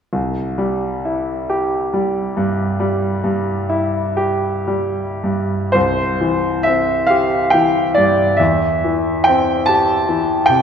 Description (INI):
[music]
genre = classical, romantic nocturne for solo piano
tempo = 34-50 BPM (dotted quarters)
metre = 12/8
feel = rubato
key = C major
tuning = A4 = 438 Hz
[part]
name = clear concert grand piano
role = solo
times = 0.1-10.6 s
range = C2 to A5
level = -15 LUFS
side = equal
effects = none
[sound]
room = wet concert hall reverb, RT60 1.8 s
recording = recorded in a church or concert hall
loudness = -15 LUFS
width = side -7 dB against mid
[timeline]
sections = 0.1-5.8 A section; 5.8-10.6 B section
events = none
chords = 0.1 C; 8.4 C/E